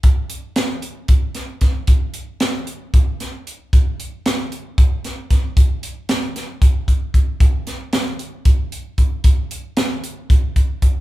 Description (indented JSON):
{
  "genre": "jazz",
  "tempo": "228 BPM (eighths)",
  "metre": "7/8",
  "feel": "straight",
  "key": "none",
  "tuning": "none",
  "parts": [
    { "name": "crisp fusion drum kit", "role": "drums", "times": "0.0-10.9 s", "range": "hi-hat, kick drum, snare drum", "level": "-15 LUFS", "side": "equal", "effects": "none" }
  ],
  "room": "light reverb",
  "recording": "band playing live in one room",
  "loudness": "-16 LUFS",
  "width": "side -16 dB against mid",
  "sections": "0.0-5.6 A section; 5.6-11.0 B section",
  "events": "none",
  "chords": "none",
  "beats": "| 0.04 0.31 0.57 0.83 1.10 1.36 1.62 | 1.89 2.15 2.41 2.67 2.94 3.20 3.46 | 3.73 3.99 4.25 4.52 4.78 5.04 5.30 | 5.57 5.83 6.09 6.36 6.62 6.88 7.15 | 7.41 7.67 7.93 8.20 8.46 8.72 8.99 | 9.25 9.51 9.78 10.04 10.30 10.56 10.83"
}